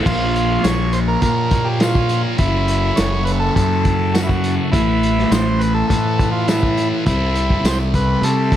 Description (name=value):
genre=psychedelic rock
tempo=103 BPM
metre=4/4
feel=straight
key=unclear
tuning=A4 = 441 Hz
part: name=bright tonewheel organ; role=sustained chords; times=0.0-8.6 s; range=A4 to E6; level=-32 LUFS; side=right 5 dB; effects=none
part: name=thick fuzz guitar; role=riff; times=0.0-8.6 s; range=F#2 to C4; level=-20 LUFS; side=left 1 dB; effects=distortion, phaser
part: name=fuzz fingered electric bass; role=bass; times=0.0-8.6 s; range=F#1 to C3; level=-20 LUFS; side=equal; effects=overdrive
part: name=combo organ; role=melody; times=0.1-8.6 s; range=E4 to Db5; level=-21 LUFS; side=equal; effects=tape echo
part: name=vintage drum kit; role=drums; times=0.1-8.6 s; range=crash cymbal, hi-hat, kick drum, snare drum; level=-20 LUFS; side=equal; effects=none
part: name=tambourine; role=percussion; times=0.6-7.8 s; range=none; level=-34 LUFS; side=left 13 dB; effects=none
room=small room ambience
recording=none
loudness=-15 LUFS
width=side -11 dB against mid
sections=0.1-8.6 A section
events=none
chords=0.1 Bbm; 2.4 F#m7; 4.7 Asus2; 7.1 C6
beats=| 0.06 0.65 1.23 1.82 | 2.40 2.99 3.57 4.15 | 4.74 5.32 5.90 6.48 | 7.07 7.65 8.23